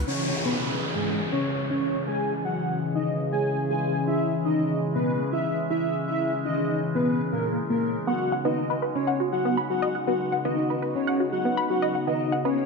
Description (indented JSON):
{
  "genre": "techno",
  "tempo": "120 BPM",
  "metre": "4/4",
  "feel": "straight",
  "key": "C# minor",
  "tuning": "A4 = 439 Hz",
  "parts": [
    { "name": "warm analog pad", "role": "sustained chords", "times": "0.0-12.7 s", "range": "C#3 to G#4", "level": "-30 LUFS", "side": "left 2 dB", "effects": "chorus" },
    { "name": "tight sequenced synth", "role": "arpeggios", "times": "0.0-0.1, 8.1-12.6 s", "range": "B3 to B5", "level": "-28 LUFS", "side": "right 1 dB", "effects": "chorus, phaser, dub echo" },
    { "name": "wide unison lead", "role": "melody", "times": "0.1-12.7 s", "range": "G#3 to G#4", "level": "-27 LUFS", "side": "left 1 dB", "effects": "ensemble chorus, dub echo" },
    { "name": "airy dreamy lead", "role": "second line", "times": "0.1-12.7 s", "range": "G#4 to G#5", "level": "-31 LUFS", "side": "equal", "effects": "chorus, dub echo" },
    { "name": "overtone-sweeping drone", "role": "drone", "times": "1.4-12.7 s", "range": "C#3 to G#3", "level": "-36 LUFS", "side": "right 1 dB", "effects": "chorus, built-in reverb" },
    { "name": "downlifter", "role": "sound effects", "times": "0.1-4.1 s", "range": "none", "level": "-32 LUFS", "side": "left 1 dB", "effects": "none" }
  ],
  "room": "moderate lush hall reverb, RT60 2.3 s",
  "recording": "none",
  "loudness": "-23 LUFS",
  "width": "side -3 dB against mid",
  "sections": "0.1-12.7 A section",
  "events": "filter sweep on analog synth lead 0.1-12.7; filter sweep on digital synth lead 0.1-12.7",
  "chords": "0.1 C#m; 8.1 B/C#",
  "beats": "| 0.07 0.57 1.07 1.57 | 2.07 2.57 3.07 3.57 | 4.07 4.57 5.07 5.57 | 6.07 6.57 7.07 7.57 | 8.07 8.57 9.07 9.57 | 10.07 10.57 11.07 11.57 | 12.07 12.57"
}